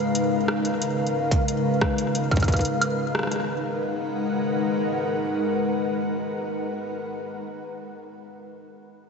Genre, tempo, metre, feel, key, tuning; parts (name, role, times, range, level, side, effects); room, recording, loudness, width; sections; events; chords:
IDM; 90 BPM; 4/4; straight; G# dorian; A4 = 440 Hz
glassy FM pad; sustained chords; 0.0-6.9 s; C#3 to F#5; -24 LUFS; left 1 dB; ensemble chorus, built-in reverb, vintage 12-bit sampler grit
booming analog drum machine; drums; 0.1-3.5 s; hi-hat, rim click, woodblock; -28 LUFS; right 1 dB; ping-pong delay
electronic kick drum; drums; 1.3-2.6 s; -22 LUFS; right 1 dB; distortion
wet lush hall reverb, RT60 2.7 s; dreamy mix soaked in reverb, nothing above 8.0 kHz; -22 LUFS; side -5 dB against mid
0.0-3.5 A section; 3.5-6.1 B section
0.0 C#13; 3.5 G#m7